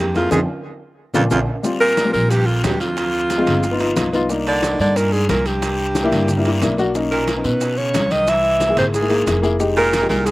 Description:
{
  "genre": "Afro-Cuban jazz",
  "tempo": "181 BPM",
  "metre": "4/4",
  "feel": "straight",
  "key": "unclear",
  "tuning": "A4 = 440 Hz",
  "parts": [
    { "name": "clear alto saxophone", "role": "melody", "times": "0.0-10.3 s", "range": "F4 to E5", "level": "-19 LUFS", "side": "equal", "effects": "slapback echo" },
    { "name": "bright baritone saxophone", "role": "second line", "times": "0.0-10.3 s", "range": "F2 to E3", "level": "-26 LUFS", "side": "right 3 dB", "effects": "none" },
    { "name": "dark upright piano", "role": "accompaniment", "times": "0.0-10.3 s", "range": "G3 to Ab4", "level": "-21 LUFS", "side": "left 2 dB", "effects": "slapback echo" },
    { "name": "upright bass", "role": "bass", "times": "0.0-10.3 s", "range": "F1 to B2", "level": "-22 LUFS", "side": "equal", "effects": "none" },
    { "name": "bongos", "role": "percussion", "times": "0.1-10.3 s", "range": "none", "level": "-28 LUFS", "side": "left 3 dB", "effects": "none" },
    { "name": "congas", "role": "percussion", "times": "0.2-10.3 s", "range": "none", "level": "-28 LUFS", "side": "left 1 dB", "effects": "none" },
    { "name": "maracas", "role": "percussion", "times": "0.2-10.3 s", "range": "none", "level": "-35 LUFS", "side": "right 5 dB", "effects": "none" },
    { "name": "timbales", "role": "percussion", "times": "0.2-10.3 s", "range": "none", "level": "-30 LUFS", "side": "right 4 dB", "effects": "slapback echo" },
    { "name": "guiro", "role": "percussion", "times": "1.6-10.3 s", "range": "none", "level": "-32 LUFS", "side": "left 4 dB", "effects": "none" }
  ],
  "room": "little or no reverb",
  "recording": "recorded outdoors, with no room sound",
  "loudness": "-15 LUFS",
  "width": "side -19 dB against mid",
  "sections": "0.0-1.6 A section; 1.6-10.3 B section",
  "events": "band accent 0.3-1.6; drum fill 1.0-1.6",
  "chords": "0.3 Fm7; 1.0 Bb; 1.6 Bb69; 3.0 Dm7b5; 3.6 Gaug7; 4.3 Cm9; 5.6 C9; 6.9 Bmaj9; 8.3 Caug7; 9.6 Fm7",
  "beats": "| 0.32 0.65 0.98 1.31 | 1.64 1.98 2.31 2.64 | 2.97 3.30 3.63 3.96 | 4.30 4.63 4.96 5.29 | 5.62 5.95 6.29 6.62 | 6.95 7.28 7.61 7.94 | 8.28 8.61 8.94 9.27 | 9.60 9.93 10.26"
}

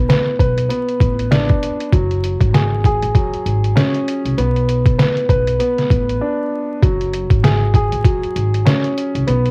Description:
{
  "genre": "hip hop, boom-bap hip-hop",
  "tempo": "98 BPM",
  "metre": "4/4",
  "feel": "swing 59% on 16ths",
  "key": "F# minor",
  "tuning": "A4 = 439 Hz",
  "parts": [
    { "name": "warm upright piano", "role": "accompaniment", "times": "0.0-9.5 s", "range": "F#3 to B4", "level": "-22 LUFS", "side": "equal", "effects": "high-pass filter, low-pass filter, cassette tape" },
    { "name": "upright bass", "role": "bass", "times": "0.0-9.5 s", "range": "F#1 to B#1", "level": "-22 LUFS", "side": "equal", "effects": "none" },
    { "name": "trip hop sampler-style drum kit", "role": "drums", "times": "0.1-9.5 s", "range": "hi-hat, kick drum, snare drum", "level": "-18 LUFS", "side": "equal", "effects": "cassette tape" }
  ],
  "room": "light reverb",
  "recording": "home recording on cassette, vinyl crackle",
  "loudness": "-16 LUFS",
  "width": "mono",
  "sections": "0.0-6.8 A section; 6.8-9.5 A section",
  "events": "break 6.2-6.8",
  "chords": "0.0 Bm; 1.9 F#sus2; 4.4 Bm; 6.8 F#sus2",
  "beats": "0.09 0.70 1.31 | 1.93 2.54 3.15 3.76 | 4.37 4.99 5.60 6.21 | 6.82 7.44 8.05 8.66 | 9.27"
}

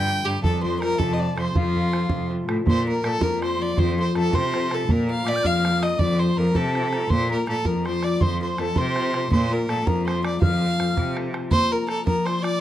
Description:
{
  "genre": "celtic folk, Celtic jig",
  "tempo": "108 BPM (dotted quarters)",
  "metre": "6/8",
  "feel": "straight",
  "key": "unclear",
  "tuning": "A4 = 439 Hz",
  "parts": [
    { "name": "warm fiddle", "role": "melody", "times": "0.0-12.6 s", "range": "F4 to G5", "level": "-26 LUFS", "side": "right 1 dB", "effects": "none" },
    { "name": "mellow mid whistle", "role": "second line", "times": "0.0-12.6 s", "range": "F5 to G6", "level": "-32 LUFS", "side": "left 4 dB", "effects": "none" },
    { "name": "Celtic harp", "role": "accompaniment", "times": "0.0-12.6 s", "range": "C3 to D5", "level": "-26 LUFS", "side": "left 3 dB", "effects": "none" },
    { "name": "rich cello", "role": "bass", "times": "0.0-11.4 s", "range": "F2 to C3", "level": "-26 LUFS", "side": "right 1 dB", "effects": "none" },
    { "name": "bodhran", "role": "percussion", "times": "0.4-12.5 s", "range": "none", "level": "-24 LUFS", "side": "right 2 dB", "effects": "none" }
  ],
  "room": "light reverb",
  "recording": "dry, close 1970s-style studio recording",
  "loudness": "-20 LUFS",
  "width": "side -12 dB against mid",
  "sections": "0.0-2.7 A section; 2.7-11.5 B section; 11.5-12.6 B section",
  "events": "none",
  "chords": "0.4 F; 2.7 Bb; 3.8 F; 4.9 Bb; 6.0 F; 7.1 Bb; 8.2 F; 9.3 Bb; 10.4 F; 11.5 Bb",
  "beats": "| 0.42 0.98 | 1.54 2.10 | 2.65 3.21 | 3.77 4.33 | 4.88 5.44 | 5.99 6.55 | 7.10 7.66 | 8.21 8.76 | 9.31 9.86 | 10.41 10.97 | 11.52 12.07"
}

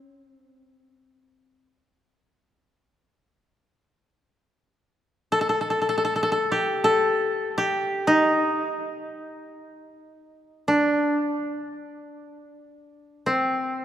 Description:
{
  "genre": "japanese traditional, Japanese chamber music",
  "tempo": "free time",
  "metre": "none",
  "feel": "none",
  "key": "C kumoi",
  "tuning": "A4 = 440 Hz",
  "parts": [
    { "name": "koto", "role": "solo", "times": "0.0-13.8 s", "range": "C4 to A4", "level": "-22 LUFS", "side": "equal", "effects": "none" }
  ],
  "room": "wet church reverb, RT60 2.5 s",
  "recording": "dark, warm production",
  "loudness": "-21 LUFS",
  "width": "side -11 dB against mid",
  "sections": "0.0-13.8 A section",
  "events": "none",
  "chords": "none",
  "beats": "free time"
}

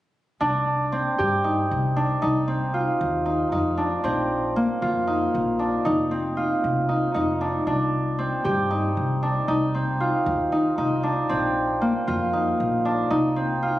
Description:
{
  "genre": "contemporary instrumental, chamber music in an uneven meter",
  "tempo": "232 BPM (eighths)",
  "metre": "7/8",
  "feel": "straight",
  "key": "C minor",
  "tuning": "A4 = 442 Hz",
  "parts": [
    { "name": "Celtic harp", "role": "arpeggios", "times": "0.4-13.8 s", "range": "Bb3 to G4", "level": "-22 LUFS", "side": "equal", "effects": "none" },
    { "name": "upright bass", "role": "bass", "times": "0.4-13.7 s", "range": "F1 to G2", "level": "-28 LUFS", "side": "equal", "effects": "none" }
  ],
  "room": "moderate concert hall reverb, RT60 2.3 s",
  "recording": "recorded on a phone in the room, studio reverb, compression",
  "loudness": "-21 LUFS",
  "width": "side -15 dB against mid",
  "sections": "0.4-13.8 A section",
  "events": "none",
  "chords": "0.4 Cmadd9; 2.2 Cmadd11; 4.0 Bbsus4; 5.9 F5; 7.7 Cmadd9; 9.5 Cmadd11; 11.3 Bbsus4; 13.1 Cm",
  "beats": "| 0.41 0.67 0.93 1.19 1.45 1.71 1.97 | 2.23 2.48 2.74 3.00 3.26 3.52 3.78 | 4.04 4.30 4.56 4.82 5.08 5.34 5.59 | 5.85 6.11 6.37 6.63 6.89 7.15 7.41 | 7.67 7.93 8.19 8.45 8.71 8.96 9.22 | 9.48 9.74 10.00 10.26 10.52 10.78 11.04 | 11.29 11.55 11.81 12.07 12.33 12.59 12.85 | 13.11 13.37 13.63"
}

